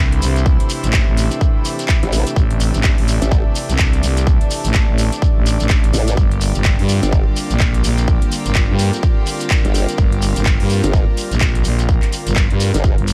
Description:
bass house; 126 BPM; 4/4; swing 59% on 16ths; A phrygian; A4 = 440 Hz
rich studio string section; sustained chords; 0.0-13.1 s; C3 to G4; -29 LUFS; equal; sidechain pumping
growling FM bass; bass; 0.0-13.1 s; G1 to G2; -20 LUFS; equal; sidechain pumping
airy breathy pad; texture; 0.0-13.1 s; C4 to E5; -30 LUFS; equal; chorus, sidechain pumping
garage drum kit; drums; 0.1-13.1 s; handclaps, hi-hat; -26 LUFS; equal; overdrive
shekere; percussion; 0.2-13.1 s; -30 LUFS; equal
electronic kick drum; drums; 0.5-13.0 s; -17 LUFS; equal
formant-sweep wobble bass; bass; 2.0-13.0 s; G1 to A1; -20 LUFS; equal; chorus, overdrive, sidechain pumping
little or no reverb; dark, warm production; -16 LUFS; mono
0.0-13.1 A section
0.0 Am; 6.2 Gm

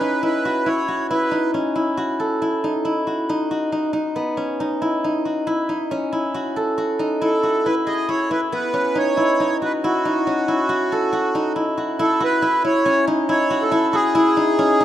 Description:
contemporary instrumental, contemporary; 138 BPM; 5/4; straight; F# dorian; A4 = 439 Hz
accordion; melody; 0.0-1.5, 7.2-14.8 s; F#4 to D#5; -21 LUFS; right 2 dB
steel-string zither; arpeggios; 0.0-14.8 s; B3 to A4; -19 LUFS; equal
moderate concert hall reverb, RT60 2.1 s; -18 LUFS; side -12 dB against mid
0.0-12.0 A section; 12.0-14.8 B section
0.0 E; 1.1 A; 3.3 B; 7.6 E; 12.0 F#5; 14.2 Emaj7

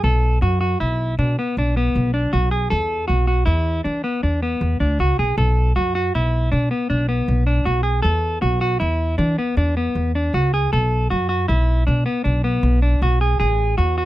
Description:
progressive instrumental, band music in an uneven meter; 157 BPM; 7/4; straight; B dorian; A4 = 435 Hz
clean electric guitar; arpeggios; 0.0-14.1 s; B3 to A4; -21 LUFS; equal
upright bass; bass; 0.0-14.1 s; A1 to E3; -19 LUFS; equal
little or no reverb; dry, close 1970s-style studio recording; -17 LUFS; side -16 dB against mid
0.0-14.1 A section
0.0 Bm7; 2.7 E7sus4; 5.4 Bm7; 8.1 E7sus4; 10.7 Bm7; 13.4 Amaj7(no3)

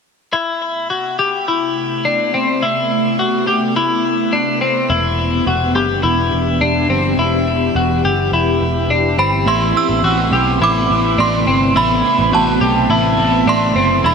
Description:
dream pop; 105 BPM; 4/4; straight; A dorian; A4 = 444 Hz
ethereal airy pad; sustained chords; 1.6-14.1 s; C3 to G4; -20 LUFS; equal; ensemble chorus, built-in reverb
twelve-string electric guitar; arpeggios; 0.3-14.1 s; C4 to G4; -17 LUFS; left 3 dB; lush chorus, ping-pong delay
vintage muted picked electric bass; bass; 4.9-14.1 s; E1 to B1; -19 LUFS; equal
synth chime; melody; 9.2-14.1 s; A5 to E6; -17 LUFS; right 4 dB; ensemble chorus, ping-pong delay
crunchy overdriven guitar; accompaniment; 9.5-14.1 s; E2 to B4; -21 LUFS; right 4 dB; harmonic tremolo, analog chorus
wet shimmer reverb, RT60 6.5 s; -13 LUFS; side -6 dB against mid
0.3-9.5 A section; 9.5-14.1 B section
0.3 Amadd9; 4.9 Em7; 9.5 Amadd9

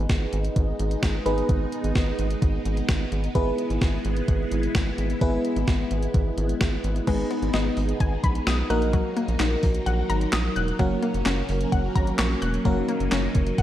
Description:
synth-pop; 129 BPM; 4/4; straight; A4 = 440 Hz
FM electric piano; accompaniment; 0.0-13.6 s; A#3 to B4; -29 LUFS; equal; chorus, phaser
string machine, full ensemble; sustained chords; 0.0-13.6 s; F#3 to E4; -30 LUFS; equal; phaser, ensemble chorus
rubbery square bass; bass; 0.0-13.6 s; E1 to B1; -26 LUFS; equal
gated 80s digital drum machine; drums; 0.1-13.6 s; crash cymbal, handclaps, hi-hat, kick drum, snare drum; -25 LUFS; equal; gated reverb, gated reverb snare
analog pluck; arpeggios; 7.1-13.6 s; F#3 to F#6; -30 LUFS; left 4 dB; chorus, tape echo
light reverb; dark, warm production; -22 LUFS; side -12 dB against mid
0.0-7.1 A section; 7.1-13.6 B section
0.0 G#m; 3.4 E/G#; 7.1 G#m; 8.7 D#m/A#; 10.8 F#

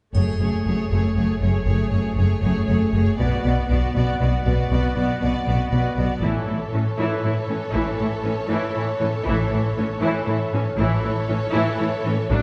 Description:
cinematic, epic orchestral film score; 79 BPM (dotted quarters); 6/8; straight; A major; A4 = 440 Hz
rich symphonic viola section; accompaniment; 0.1-12.4 s; E3 to E4; -28 LUFS; equal
rich symphonic double bass section; bass; 0.1-12.4 s; F#1 to B1; -26 LUFS; equal
triangle; percussion; 0.1-1.1 s; -47 LUFS; equal
rich symphonic violin section; melody; 0.2-6.2 s; C#5 to D5; -35 LUFS; equal
warm symphonic violin section; second line; 0.2-12.4 s; F#4 to D5; -31 LUFS; equal
rich symphonic cello section; bass; 0.2-12.4 s; F#2 to B2; -27 LUFS; equal
wet scoring stage reverb, RT60 1.7 s; heard from further back in the room, nothing above 10.9 kHz; -22 LUFS; mono
0.2-6.2 A section; 6.2-12.4 B section
build-up 6.2-12.4
0.2 F#madd9; 3.2 Bm; 6.2 A

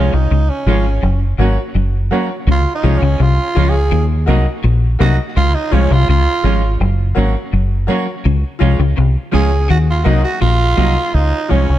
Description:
reggae; 83 BPM; 4/4; straight; Db major; A4 = 440 Hz
raspy tenor saxophone; melody; 0.0-11.8 s; Db4 to Ab4; -19 LUFS; right 3 dB; tape echo
clean electric guitar; accompaniment; 0.0-11.7 s; F3 to Gb4; -22 LUFS; right 4 dB; tremolo, tape echo
clean electric guitar; riff; 0.0-10.9 s; Gb2 to Eb3; -22 LUFS; left 8 dB; ensemble chorus
bright upright piano; stabs; 0.0-11.7 s; F4 to Eb5; -24 LUFS; left 4 dB
deep dub fingered electric bass; bass; 0.0-11.8 s; Gb1 to Eb2; -13 LUFS; equal
light reverb; dark, warm production; -12 LUFS; side -13 dB against mid
0.0-11.1 A section
tenor saxophone solo 0.0-11.1
0.0 Db; 1.0 Gb; 2.5 Db; 3.9 Ebm; 5.4 Db; 6.8 Gb; 8.2 Db; 9.7 Ebm; 11.1 Db

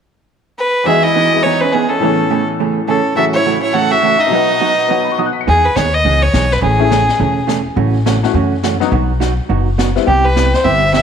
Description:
country, western swing; 209 BPM; 4/4; swing 61% on 8ths; E major; A4 = 440 Hz
clear fiddle; melody; 0.6-7.4, 10.1-11.0 s; G4 to F#5; -14 LUFS; left 1 dB; tape echo
bright upright piano; accompaniment; 0.8-10.1 s; E2 to C#7; -19 LUFS; left 10 dB
clear fiddle; second line; 0.9-5.2 s; B3 to A4; -19 LUFS; right 8 dB
vintage hollow-body jazz guitar; accompaniment; 0.9-11.0 s; A2 to G#4; -18 LUFS; right 9 dB
upright bass; bass; 5.5-11.0 s; E1 to F#2; -16 LUFS; left 1 dB
vintage brush drum kit; drums; 5.5-11.0 s; brushed snare drum, hi-hat, snare drum; -24 LUFS; left 8 dB
moderate echo chamber reverb, RT60 1.4 s, studio reverb; 1960s-style stereo with parts hard left and right; -11 LUFS; side -7 dB against mid
0.9-5.5 A section; 5.5-11.0 B section
0.0 N.C.; 0.9 Emaj7; 2.0 Amaj7; 3.2 F#m7/A; 4.3 B; 5.5 Emaj7; 6.6 Amaj7; 7.8 F#m7/A; 8.9 B; 10.1 Cmaj7

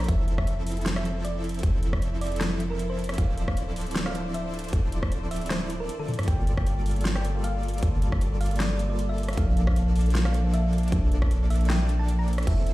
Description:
future bass; 155 BPM; 4/4; swing 54% on 16ths, half-time; A4 = 440 Hz
warm studio string section; sustained chords; 0.0-12.7 s; F3 to C5; -39 LUFS; equal; sidechain pumping
supersaw chords; riff; 0.0-12.7 s; F3 to E5; -35 LUFS; equal; sidechain pumping
warm 808-style bass; bass; 0.0-12.7 s; D1 to Bb1; -26 LUFS; equal; sidechain pumping
big-room dance drum kit; drums; 0.0-12.7 s; crash cymbal, hi-hat, rim click, snare drum, toms; -33 LUFS; equal; overdrive
thumb-piano-like synth pluck; melody; 0.1-12.6 s; A4 to Bb5; -37 LUFS; right 1 dB; chorus, sidechain pumping, dub echo
electronic kick drum; drums; 0.1-12.6 s; -26 LUFS; equal; overdrive
mellow tine electric piano; accompaniment; 6.3-12.7 s; F3 to A4; -33 LUFS; right 2 dB; fast stereo tremolo, sidechain pumping
digital ambience; played on a big sound system in a bare room, large studio reverb; -23 LUFS; side -17 dB against mid
0.0-12.7 A section
drum fill 6.0
0.1 Fmaj7; 3.2 Dm9; 6.3 Gm9; 9.4 Bbmaj7

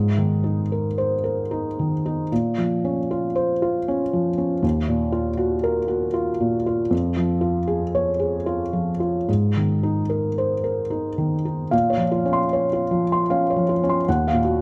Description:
neoclassical minimalist piano; 72-79 BPM; 3/4; rubato; Bb minor; A4 = 438 Hz
felt-muted upright piano; solo; 0.0-14.6 s; Eb2 to C6; -22 LUFS; equal
light reverb; close, detailed microphones; -22 LUFS; mono
0.0-11.7 A section; 11.7-14.6 A section
0.0 Abadd9; 2.3 Bbmadd9; 4.6 Ebmadd9; 6.9 Db/F; 9.3 Abadd9; 11.7 Bbmadd9; 14.1 Ebmadd9

